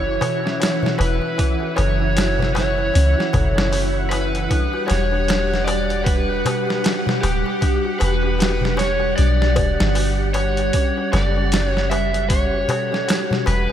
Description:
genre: trip hop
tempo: 77 BPM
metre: 4/4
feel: swing 59% on 16ths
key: unclear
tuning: A4 = 440 Hz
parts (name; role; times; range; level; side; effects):
- overdriven slide guitar; melody; 0.0-13.7 s; G4 to E5; -23 LUFS; right 1 dB; lush chorus, dub echo
- string machine, cellos; sustained chords; 0.0-13.7 s; E4 to F#5; -25 LUFS; equal; ensemble chorus
- dark detuned synth bell; arpeggios; 0.0-13.7 s; C#4 to A4; -30 LUFS; left 4 dB; chorus, phaser, diffuse ambient delay
- soft 808-style bass; bass; 0.0-13.7 s; D1 to C#2; -20 LUFS; equal; tube saturation
- bowed-like drone; texture; 0.0-13.7 s; F#5; -32 LUFS; equal; built-in reverb
- boom bap sampler-style drum kit; drums; 0.2-13.7 s; hi-hat, kick drum, snare drum; -23 LUFS; equal; none
- darbuka; percussion; 0.2-13.7 s; none; -28 LUFS; left 3 dB; none
room: moderate lush hall reverb, RT60 2.3 s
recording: dreamy mix soaked in reverb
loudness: -17 LUFS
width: side -10 dB against mid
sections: 0.0-13.7 A section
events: none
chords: 0.0 F#m7; 4.5 Em9; 10.7 F#m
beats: 0.61 | 1.39 2.17 2.95 3.73 | 4.50 5.28 6.06 6.84 | 7.62 8.40 9.18 9.96 | 10.74 11.52 12.30 13.08

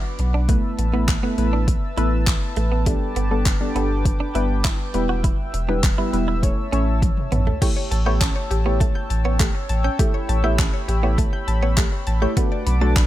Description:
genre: dance-pop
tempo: 101 BPM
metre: 4/4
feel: straight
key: unclear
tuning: A4 = 440 Hz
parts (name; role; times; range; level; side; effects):
- deep mellow chord stab; accompaniment; 0.0-13.1 s; F#3 to E5; -26 LUFS; equal; chorus, sidechain pumping
- chorused pulse-width pad; sustained chords; 0.0-13.1 s; B4 to E6; -31 LUFS; left 1 dB; sidechain pumping
- direct-recorded clean electric guitar; riff; 0.0-13.1 s; A3 to F#4; -30 LUFS; right 6 dB; wide subtle chorus
- warm sub bass; bass; 0.2-13.1 s; E1 to B1; -21 LUFS; equal; sidechain pumping
- deep house drum kit; drums; 0.2-13.1 s; crash cymbal, handclaps, hi-hat, kick drum, toms; -21 LUFS; equal; overdrive
- mallet-like synth pluck; arpeggios; 7.6-13.0 s; G4 to A6; -31 LUFS; left 4 dB; chorus, sidechain pumping, ping-pong delay
room: little or no reverb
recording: none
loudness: -18 LUFS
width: side -14 dB against mid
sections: 0.0-7.6 A section; 7.6-13.1 B section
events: drum fill 7.0-7.6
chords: 0.5 Asus2; 2.9 Gadd9; 4.9 Em; 6.4 A; 7.6 A7; 12.4 Bm7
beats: | 0.49 1.08 1.68 2.27 | 2.87 3.46 4.05 4.65 | 5.24 5.83 6.43 7.02 | 7.62 8.21 8.80 9.40 | 9.99 10.59 11.18 11.78 | 12.37 12.96

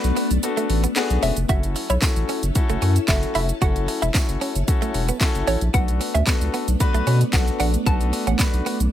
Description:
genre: dance-pop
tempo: 113 BPM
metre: 4/4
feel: straight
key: F# minor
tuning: A4 = 440 Hz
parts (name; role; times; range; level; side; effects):
- hollow square pluck; melody; 0.0-8.6 s; C#5 to A5; -28 LUFS; equal; chorus, sidechain pumping
- warm concert grand piano; accompaniment; 0.0-8.8 s; A3 to B4; -27 LUFS; left 5 dB; sidechain pumping
- ensemble organ-string; sustained chords; 0.0-8.9 s; F#3 to A4; -29 LUFS; equal; phaser, ensemble chorus, sidechain pumping
- saturated sub bass; bass; 0.0-8.9 s; E1 to B2; -21 LUFS; equal; sidechain pumping
- house drum kit; drums; 0.0-8.9 s; handclaps, hi-hat, kick drum, shaker, snare drum; -22 LUFS; equal; none
- direct-recorded clean electric guitar; riff; 0.2-8.8 s; A3 to F#4; -28 LUFS; right 8 dB; analog chorus
- tambourine; percussion; 2.0-8.5 s; none; -32 LUFS; right 7 dB; none
room: little or no reverb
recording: none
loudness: -18 LUFS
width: side -11 dB against mid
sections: 0.0-8.9 A section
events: break 0.0-1.5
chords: 0.0 Bm7; 1.5 F#m7; 5.7 Bm7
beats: 0.43 0.96 | 1.49 2.02 2.56 3.09 | 3.62 4.15 4.68 5.21 | 5.74 6.27 6.80 7.33 | 7.87 8.40

